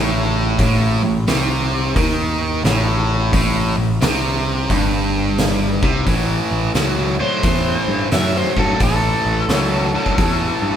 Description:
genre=blues rock power trio and southern rock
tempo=88 BPM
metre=4/4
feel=swing 65% on 8ths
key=unclear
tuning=A4 = 443 Hz
part: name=fuzz guitar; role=riff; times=0.0-10.8 s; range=G2 to F#3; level=-19 LUFS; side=equal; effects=distortion
part: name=growling picked electric bass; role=bass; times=0.0-10.8 s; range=G1 to G2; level=-21 LUFS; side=equal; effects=overdrive
part: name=oversized low-tuned drum kit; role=drums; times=0.6-10.4 s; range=hi-hat, kick drum, snare drum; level=-21 LUFS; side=equal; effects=none
part: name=overdriven slide guitar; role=melody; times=7.2-10.8 s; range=A4 to E5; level=-21 LUFS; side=left 1 dB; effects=tape echo
room=moderate studio reverb, RT60 0.9 s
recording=band playing live in one room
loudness=-15 LUFS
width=side -9 dB against mid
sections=0.0-6.1 A section; 6.1-10.8 B section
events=electric slide guitar solo 6.1-10.8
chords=0.0 Am7b5; 6.1 A

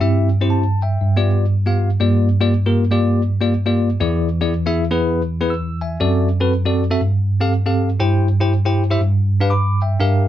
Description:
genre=gospel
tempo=120 BPM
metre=4/4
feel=swing 63% on 8ths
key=unclear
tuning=A4 = 442 Hz
part: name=bell-like tine electric piano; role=solo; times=0.0-10.3 s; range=E2 to E6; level=-15 LUFS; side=equal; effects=fast stereo tremolo
room=moderate studio ambience, RT60 0.5 s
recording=band playing live in one room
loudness=-15 LUFS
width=side -12 dB against mid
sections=0.0-2.0 A section; 2.0-10.3 B section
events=none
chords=0.0 C/G; 1.0 G7; 2.0 Gm7; 4.0 E7; 6.0 D7/F#; 7.0 G9sus4; 8.0 C/G; 9.0 G

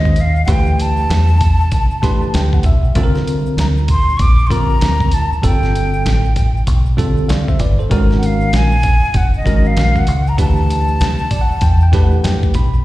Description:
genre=hip hop, jazz-hop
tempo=97 BPM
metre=4/4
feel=swing 62% on 16ths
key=unclear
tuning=A4 = 441 Hz
part: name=breathy hollow jazz flute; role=melody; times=0.0-12.2 s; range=Eb5 to D6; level=-20 LUFS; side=equal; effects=plate reverb, slapback echo
part: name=bell-like tine electric piano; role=accompaniment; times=0.0-12.8 s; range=D3 to C6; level=-20 LUFS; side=equal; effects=fast stereo tremolo, plate reverb, slapback echo
part: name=deep dub fingered electric bass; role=bass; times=0.0-12.8 s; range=Gb1 to F#2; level=-15 LUFS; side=equal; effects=none
part: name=dusty soul sampler-style drum kit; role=drums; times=0.1-12.7 s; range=hi-hat, kick drum, snare drum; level=-18 LUFS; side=equal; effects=none
part: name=maracas and congas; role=percussion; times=0.1-12.8 s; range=none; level=-30 LUFS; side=right 1 dB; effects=none
room=little or no reverb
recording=live gig heard through the venue's PA, recital hall reverb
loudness=-12 LUFS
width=side -16 dB against mid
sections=0.0-12.8 A section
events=tine electric piano fill 1.7-3.0, 11.0-12.8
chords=0.5 D9sus4; 3.0 C9sus4; 5.4 G9sus4; 7.9 Ab9sus4; 10.4 D9sus4

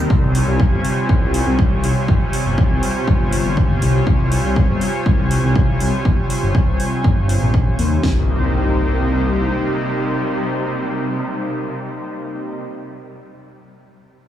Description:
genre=melodic techno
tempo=121 BPM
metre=4/4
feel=straight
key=C phrygian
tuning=A4 = 435 Hz
part: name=lush unison pad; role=sustained chords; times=0.0-12.6 s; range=C3 to Ab5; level=-22 LUFS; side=equal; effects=chorus, sidechain pumping
part: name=dark detuned saw bass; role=bass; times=0.0-9.5 s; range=G1 to Eb2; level=-18 LUFS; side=left 1 dB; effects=sidechain pumping
part: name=swarming drone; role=drone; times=0.0-12.6 s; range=C3 to G3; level=-26 LUFS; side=equal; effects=built-in reverb, sidechain pumping
part: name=house drum kit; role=drums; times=0.1-8.2 s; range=kick drum, snare drum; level=-17 LUFS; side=equal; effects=overdrive
part: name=electronic hi-hat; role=drums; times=0.3-7.9 s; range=none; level=-31 LUFS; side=right 1 dB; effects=overdrive, sidechain pumping on cymbals, sidechain pumping on perc, sidechain pumping on hats
part: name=impact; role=sound effects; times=8.0-12.7 s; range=none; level=-28 LUFS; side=equal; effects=none
room=light reverb, digital ambience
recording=small room ambience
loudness=-15 LUFS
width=side -11 dB against mid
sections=0.0-8.0 A section; 8.0-12.0 B section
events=filter sweep on detuned saw bass 0.0-8.0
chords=0.1 Db; 8.0 Cm7

